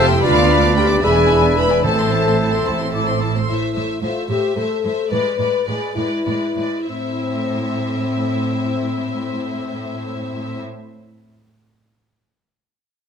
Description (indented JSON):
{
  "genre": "quick classical-period movement for symphony orchestra",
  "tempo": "63-78 BPM (dotted quarters)",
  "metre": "6/8",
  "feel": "rubato",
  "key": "A minor",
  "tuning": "A4 = 440 Hz",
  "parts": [
    { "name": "clear studio violin section", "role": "melody", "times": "0.0-10.6 s", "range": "D5 to B5", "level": "-28 LUFS", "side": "equal", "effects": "none" },
    { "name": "clear oboe", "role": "second line", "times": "0.0-3.2 s", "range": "D5 to E5", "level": "-24 LUFS", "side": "right 1 dB", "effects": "none" },
    { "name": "mellow hollow flute section", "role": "second line", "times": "0.0-3.5 s", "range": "A5 to E6", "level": "-26 LUFS", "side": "left 3 dB", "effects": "none" },
    { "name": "warm clarinet", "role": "second line", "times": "0.0-3.2 s", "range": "B4 to C5", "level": "-27 LUFS", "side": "left 2 dB", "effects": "none" },
    { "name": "warm studio violin section", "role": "second line", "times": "0.0-10.6 s", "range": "A4 to D6", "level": "-26 LUFS", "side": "left 2 dB", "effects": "none" },
    { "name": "mellow bassoon", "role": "accompaniment", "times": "0.0-3.2 s", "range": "C4 to D4", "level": "-24 LUFS", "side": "right 4 dB", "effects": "none" },
    { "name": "rich chamber viola section", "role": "accompaniment", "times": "0.0-10.6 s", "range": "G#3 to A4", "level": "-27 LUFS", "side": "left 2 dB", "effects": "none" },
    { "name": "mellow French horn section", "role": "sustained chords", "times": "0.0-10.6 s", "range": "C4 to B4", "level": "-20 LUFS", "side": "left 4 dB", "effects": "none" },
    { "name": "clear chamber double bass section", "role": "bass", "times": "0.0-3.4 s", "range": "E1 to D2", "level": "-22 LUFS", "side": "right 6 dB", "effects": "none" },
    { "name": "warm chamber cello section", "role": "bass", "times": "0.0-10.6 s", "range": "D2 to A2", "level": "-25 LUFS", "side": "right 3 dB", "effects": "none" },
    { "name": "timpani", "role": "percussion", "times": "1.8-2.6 s", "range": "A2", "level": "-26 LUFS", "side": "right 2 dB", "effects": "none" }
  ],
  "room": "moderate recital hall reverb, RT60 1.5 s",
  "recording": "close, detailed microphones",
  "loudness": "-16 LUFS",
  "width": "side -7 dB against mid",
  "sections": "0.0-3.5 A section; 3.5-6.9 B section; 6.9-10.5 C section",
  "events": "slowing down 2.7-6.9",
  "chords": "0.2 Bdim/D; 1.0 E7; 1.8 Am; 5.1 E7/A; 6.9 Am"
}